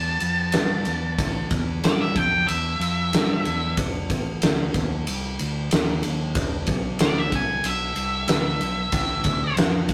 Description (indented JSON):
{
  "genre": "blues rock power trio and southern rock",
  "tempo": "93 BPM",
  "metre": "4/4",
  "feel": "straight",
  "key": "A minor",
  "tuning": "A4 = 440 Hz",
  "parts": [
    { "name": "octave-fuzz lead guitar", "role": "melody", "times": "0.0-9.5 s", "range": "D5 to A5", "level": "-27 LUFS", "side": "equal", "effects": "distortion" },
    { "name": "growling fingered electric bass", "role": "bass", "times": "0.0-9.9 s", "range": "E1 to G2", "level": "-30 LUFS", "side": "equal", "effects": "overdrive" },
    { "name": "big rock drum kit", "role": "drums", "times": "0.2-9.9 s", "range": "kick drum, ride cymbal, snare drum", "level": "-26 LUFS", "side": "equal", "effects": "none" }
  ],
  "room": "light reverb",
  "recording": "rough rehearsal-room recording, tube saturation",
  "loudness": "-23 LUFS",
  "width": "mono",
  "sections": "0.0-9.9 A section",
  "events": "lead electric guitar solo 0.0-9.9",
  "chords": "0.0 A5; 3.8 F7; 6.4 E5; 8.9 A5",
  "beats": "0.55 | 1.20 1.84 2.49 3.14 | 3.79 4.43 5.08 5.72 | 6.36 7.01 7.65 8.29 | 8.94 9.58"
}